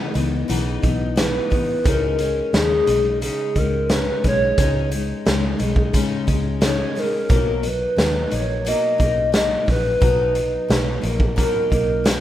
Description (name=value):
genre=indie pop, bedroom pop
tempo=88 BPM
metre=4/4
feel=straight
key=C# dorian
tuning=A4 = 439 Hz
part: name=picked steel-string acoustic guitar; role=accompaniment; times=0.0-12.2 s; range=B2 to D#4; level=-25 LUFS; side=left 4 dB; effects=wide subtle chorus, vibrato effect
part: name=vintage muted fingered electric bass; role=bass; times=0.2-12.2 s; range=A#1 to D#2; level=-24 LUFS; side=right 1 dB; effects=none
part: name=raw garage drum kit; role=drums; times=0.2-12.2 s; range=hi-hat, kick drum, snare drum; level=-22 LUFS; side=equal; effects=none
part: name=hollow clarinet-like synth lead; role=melody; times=1.2-12.2 s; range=G#4 to D#5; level=-21 LUFS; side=equal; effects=lush chorus, ping-pong delay
room=light reverb, small room ambience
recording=rough home demo mix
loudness=-17 LUFS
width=side -12 dB against mid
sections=0.0-1.9 A section; 1.9-12.2 B section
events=none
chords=0.0 C#m9; 1.9 C#sus2; 7.3 Bmaj7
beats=0.49 1.17 | 1.85 2.53 3.21 3.90 | 4.58 5.25 5.93 6.62 | 7.29 7.97 8.65 9.34 | 10.01 10.69 11.37 12.05